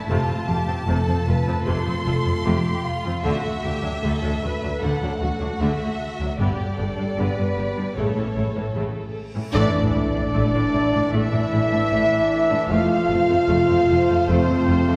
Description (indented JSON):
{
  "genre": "cinematic",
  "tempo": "76 BPM",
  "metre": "4/4",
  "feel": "straight",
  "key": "unclear",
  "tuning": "A4 = 436 Hz",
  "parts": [
    { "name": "rich studio violin section", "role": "melody", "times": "0.0-15.0 s", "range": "C5 to C6", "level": "-35 LUFS", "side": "equal", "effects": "none" },
    { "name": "warm symphonic violin section", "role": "second line", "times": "0.0-15.0 s", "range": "F4 to F5", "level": "-33 LUFS", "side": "equal", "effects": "none" },
    { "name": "mellow French horn section", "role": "sustained chords", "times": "0.0-15.0 s", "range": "A3 to A4", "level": "-28 LUFS", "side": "equal", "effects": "none" },
    { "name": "rich symphonic viola section", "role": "accompaniment", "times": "0.1-15.0 s", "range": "C3 to G4", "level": "-31 LUFS", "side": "equal", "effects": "none" },
    { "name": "rich studio double bass section", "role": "bass", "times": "0.1-14.8 s", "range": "F1 to D2", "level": "-29 LUFS", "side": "equal", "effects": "none" },
    { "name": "rich symphonic cello section", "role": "bass", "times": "0.1-15.0 s", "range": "D2 to A2", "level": "-29 LUFS", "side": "equal", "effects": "none" },
    { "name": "reverse cymbal and sub drop", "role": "sound effects", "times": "9.4-12.7 s", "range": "none", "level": "-34 LUFS", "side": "equal", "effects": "none" },
    { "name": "rich chamber string section", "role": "sustained chords", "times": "9.5-15.0 s", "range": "A3 to D5", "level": "-33 LUFS", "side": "equal", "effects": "none" },
    { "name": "bright trumpet section", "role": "stabs", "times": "9.5-15.0 s", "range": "C5 to F5", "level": "-29 LUFS", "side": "equal", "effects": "none" },
    { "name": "mellow hollow concert flute", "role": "second line", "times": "9.6-15.0 s", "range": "C5 to F5", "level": "-31 LUFS", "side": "equal", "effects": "none" },
    { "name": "clear trombone section", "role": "sustained chords", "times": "9.6-15.0 s", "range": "E3 to D4", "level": "-33 LUFS", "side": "equal", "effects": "none" }
  ],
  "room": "wet concert hall reverb, RT60 1.8 s",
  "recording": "heard from further back in the room",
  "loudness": "-22 LUFS",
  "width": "mono",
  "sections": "0.0-9.6 A section; 9.6-15.0 A section",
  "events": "reverse cymbal 9.4; band accent 9.6-10.3; impact 9.6-12.7",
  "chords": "0.1 F; 3.2 D; 6.4 G; 8.0 A; 9.6 Asus4; 12.7 F",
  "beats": "| 0.08 0.87 1.66 2.45 | 3.24 4.03 4.82 5.61 | 6.40 7.18 7.97 8.76 | 9.55 10.34 11.13 11.92 | 12.71 13.50 14.29"
}